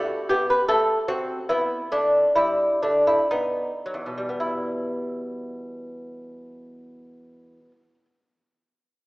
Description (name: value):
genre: classical, baroque-style dance for lute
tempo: 53-80 BPM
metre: 3/4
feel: rubato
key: E minor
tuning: A4 = 440 Hz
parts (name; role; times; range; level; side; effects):
- lute; solo; 0.0-8.1 s; E2 to B4; -22 LUFS; equal; none
room: wet scoring stage reverb, RT60 1.8 s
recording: recorded in a church or concert hall, small speaker sound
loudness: -21 LUFS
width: side -22 dB against mid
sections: 0.0-4.4 A section; 4.4-9.1 B section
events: slowing down 0.0-4.4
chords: 0.0 A7sus2; 0.7 Am; 1.5 G69; 3.3 B; 4.4 Em